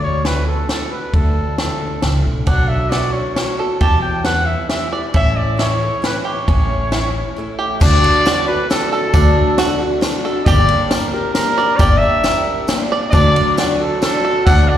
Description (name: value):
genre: indie folk with a building arrangement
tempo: 135 BPM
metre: 3/4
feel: straight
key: D major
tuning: A4 = 440 Hz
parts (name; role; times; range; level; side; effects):
- mellow trumpet; melody; 0.0-14.8 s; A4 to A5; -19 LUFS; equal; slapback echo
- fingerpicked old ladder-braced acoustic guitar; accompaniment; 0.0-3.8 s; D2 to F#4; -29 LUFS; left 1 dB; slapback echo
- upright bass; bass; 0.0-14.6 s; G1 to E2; -17 LUFS; equal; none
- compact cocktail drum kit; drums; 0.2-14.6 s; crash cymbal, kick drum, ride cymbal, snare drum; -19 LUFS; equal; none
- picked acoustic archtop guitar; accompaniment; 2.5-14.8 s; E2 to G4; -22 LUFS; left 4 dB; slapback echo
- bluegrass banjo; arpeggios; 2.5-14.8 s; C#4 to D5; -23 LUFS; right 6 dB; slapback echo
- tambourine; percussion; 7.8-14.6 s; none; -35 LUFS; left 2 dB; none
- bright upright piano; accompaniment; 13.1-14.8 s; D2 to D5; -27 LUFS; equal; none
room: light reverb, small room ambience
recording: live gig heard through the venue's PA, recital hall reverb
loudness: -14 LUFS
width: side -11 dB against mid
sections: 0.0-7.8 A section; 7.8-14.8 B section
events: break 7.4-7.8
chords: 0.0 D; 2.5 Bm; 3.8 Em; 5.1 A; 7.8 D; 10.5 Gm; 13.1 D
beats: 0.25 0.70 | 1.14 1.59 2.03 | 2.48 2.92 3.37 | 3.81 4.26 4.70 | 5.15 5.59 6.04 | 6.48 6.92 7.37 | 7.81 8.26 8.70 | 9.14 9.59 10.03 | 10.47 10.92 11.36 | 11.80 12.25 12.69 | 13.13 13.58 14.02 | 14.47